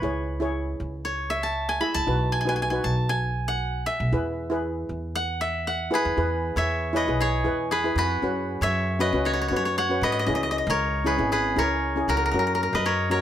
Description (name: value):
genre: calypso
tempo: 117 BPM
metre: 4/4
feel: straight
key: unclear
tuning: A4 = 440 Hz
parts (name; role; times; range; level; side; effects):
- koto; melody; 0.0-13.2 s; F#4 to B5; -25 LUFS; equal; none
- steel pan; accompaniment; 0.0-13.2 s; C#4 to E5; -28 LUFS; left 1 dB; none
- upright bass; bass; 0.0-13.2 s; G#1 to G#2; -28 LUFS; right 1 dB; none
room: moderate studio reverb, RT60 0.6 s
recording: none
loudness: -22 LUFS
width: side -10 dB against mid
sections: 0.0-6.2 A section; 6.2-13.2 B section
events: koto solo 0.0-6.2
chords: 0.0 C#m; 2.1 B; 4.1 E; 8.2 F#sus4; 10.3 C#m; 12.3 F#